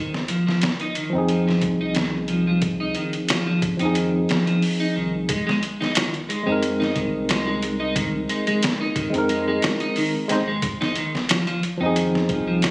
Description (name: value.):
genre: trip hop.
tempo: 90 BPM.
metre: 4/4.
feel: swing 53% on 16ths.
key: F minor.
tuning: A4 = 440 Hz.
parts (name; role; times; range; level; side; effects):
clean electric guitar; arpeggios; 0.0-12.6 s; Eb3 to Eb4; -24 LUFS; equal; analog chorus, tape echo.
warm sub bass; bass; 0.0-12.7 s; F1 to F2; -37 LUFS; equal; none.
trip hop sampler-style drum kit; drums; 0.1-12.7 s; hi-hat, kick drum, snare drum; -24 LUFS; equal; overdrive, small room ambience.
tine electric piano; accompaniment; 1.1-12.7 s; F3 to C5; -23 LUFS; equal; harmonic tremolo, tape echo.
room: light reverb, digital ambience.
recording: recorded on a phone in the room, studio reverb, compression.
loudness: -19 LUFS.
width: side -26 dB against mid.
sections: 0.0-12.7 A section.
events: none.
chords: 0.0 Fm7; 5.3 Abadd9/F; 10.6 Fm7.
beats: 0.63 1.29 1.96 | 2.63 3.29 3.96 4.63 | 5.29 5.96 6.63 7.29 | 7.96 8.63 9.29 9.96 | 10.63 11.29 11.96 12.63.